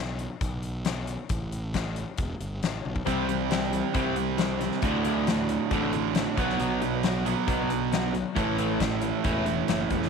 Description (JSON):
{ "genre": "classic rock", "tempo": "136 BPM", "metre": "4/4", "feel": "straight", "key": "unclear", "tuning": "A4 = 440 Hz", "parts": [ { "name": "fuzz fingered electric bass", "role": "bass", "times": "0.0-10.1 s", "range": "E1 to D2", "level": "-33 LUFS", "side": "right 1 dB", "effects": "overdrive" }, { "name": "huge arena drum kit", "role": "drums", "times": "0.2-10.1 s", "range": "hi-hat, kick drum, snare drum, toms", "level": "-31 LUFS", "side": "left 4 dB", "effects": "none" }, { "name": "fingerpicked twelve-string acoustic guitar", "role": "accompaniment", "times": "3.0-10.1 s", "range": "A2 to A4", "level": "-35 LUFS", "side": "left 9 dB", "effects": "none" }, { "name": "cranked stack guitar", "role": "riff", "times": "3.1-10.1 s", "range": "D2 to C4", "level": "-28 LUFS", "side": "right 13 dB", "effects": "overdrive" }, { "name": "distorted electric guitar", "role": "riff", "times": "3.1-10.1 s", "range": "D2 to C4", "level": "-31 LUFS", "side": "left 10 dB", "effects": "distortion" } ], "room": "moderate spring reverb, RT60 1.3 s, small room ambience", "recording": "1960s-style stereo with parts hard left and right", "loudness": "-25 LUFS", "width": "side -5 dB against mid", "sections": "0.0-10.1 A section", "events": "drum fill 2.8", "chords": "0.0 N.C.; 1.3 A5; 3.1 C; 4.8 D; 6.4 Bm; 8.4 A", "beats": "0.41 0.85 | 1.29 1.74 2.18 2.62 | 3.06 3.51 3.95 4.39 | 4.83 5.27 5.71 6.16 | 6.60 7.04 7.48 7.92 | 8.36 8.80 9.24 9.69" }